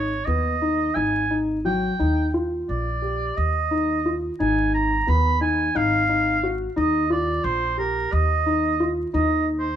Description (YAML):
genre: contemporary instrumental, contemporary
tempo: 176 BPM (eighths)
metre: 7/8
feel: straight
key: Eb major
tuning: A4 = 440 Hz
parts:
  - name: clear oboe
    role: melody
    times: 0.0-9.8 s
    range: Bb4 to Cb6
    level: -24 LUFS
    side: right 3 dB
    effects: none
  - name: felt-muted upright piano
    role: arpeggios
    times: 0.0-9.7 s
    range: Gb3 to G4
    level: -24 LUFS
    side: left 2 dB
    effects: none
  - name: upright bass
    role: bass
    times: 0.0-9.8 s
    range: Ab1 to Eb2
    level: -26 LUFS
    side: equal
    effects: none
room: moderate spring reverb, RT60 1.3 s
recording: vinyl crackle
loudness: -20 LUFS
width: side -10 dB against mid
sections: 0.0-9.8 A section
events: none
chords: 0.0 Abm; 2.0 Eb; 4.4 Ab5; 6.8 Eb